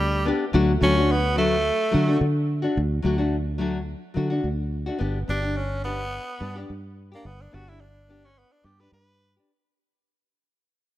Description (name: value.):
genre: highlife guitar band.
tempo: 107 BPM.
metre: 4/4.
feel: swing 55% on 16ths.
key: D major.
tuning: A4 = 440 Hz.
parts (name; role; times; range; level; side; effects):
raspy tenor saxophone; melody; 0.0-9.3 s; G3 to B4; -26 LUFS; right 1 dB; none.
fingered electric bass; bass; 0.0-9.4 s; G1 to D3; -25 LUFS; equal; none.
nylon-string guitar; accompaniment; 0.3-9.5 s; F#3 to G4; -26 LUFS; left 3 dB; none.
room: light reverb, studio reverb.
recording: none.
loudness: -21 LUFS.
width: side -14 dB against mid.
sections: 0.5-9.5 A section.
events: fade-out 0.5-9.5; tenor saxophone solo 0.5-9.5.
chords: 0.0 G; 0.5 D; 5.0 G.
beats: | 0.53 1.09 1.65 2.21 | 2.77 3.32 3.88 4.44 | 5.00 5.56 6.12 6.69 | 7.25 7.81 8.37 8.93.